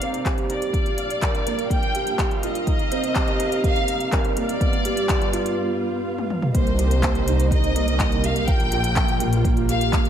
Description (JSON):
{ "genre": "piano and strings electronica", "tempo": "124 BPM", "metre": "4/4", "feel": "straight", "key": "C minor", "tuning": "A4 = 439 Hz", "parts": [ { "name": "rich studio violin section", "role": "melody", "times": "0.0-10.1 s", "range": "C5 to G5", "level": "-27 LUFS", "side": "left 1 dB", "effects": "low-pass filter, diffuse ambient delay" }, { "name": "dark studio string section", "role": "sustained chords", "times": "0.0-10.1 s", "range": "G2 to F5", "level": "-31 LUFS", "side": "right 1 dB", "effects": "none" }, { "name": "felt-muted upright piano", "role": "riff", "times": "0.0-10.1 s", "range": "Bb3 to F5", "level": "-26 LUFS", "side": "right 3 dB", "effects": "wide subtle chorus, diffuse ambient delay" }, { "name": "organic electronic drum kit", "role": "drums", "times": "0.0-10.1 s", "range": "handclaps, hi-hat, toms", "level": "-29 LUFS", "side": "left 1 dB", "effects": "overdrive, small room ambience" }, { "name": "electronic kick drum", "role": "drums", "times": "0.3-10.0 s", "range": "none", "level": "-23 LUFS", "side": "equal", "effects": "overdrive, small room ambience" }, { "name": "warm studio double bass section", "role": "bass", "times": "6.5-10.1 s", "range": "Bb1 to C2", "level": "-22 LUFS", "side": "equal", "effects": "sidechain pumping" } ], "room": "wet plate reverb, RT60 1.5 s, small room ambience", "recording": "dreamy mix soaked in reverb", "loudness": "-19 LUFS", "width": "side -9 dB against mid", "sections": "0.0-6.5 A section; 6.5-10.1 B section", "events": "build-up 0.0-6.5; break 5.6-6.5; drum fill 6.2-6.5; drop 6.5-10.1", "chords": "0.0 Cm7; 0.7 Gm7/Bb; 2.7 Cm7; 4.6 G7; 6.5 Cm7; 8.5 Gm7/Bb", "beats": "0.26 | 0.74 1.23 1.71 2.19 | 2.68 3.16 3.65 4.13 | 4.61 5.10 5.58 6.07 | 6.55 7.03 7.52 8.00 | 8.48 8.97 9.45 9.94" }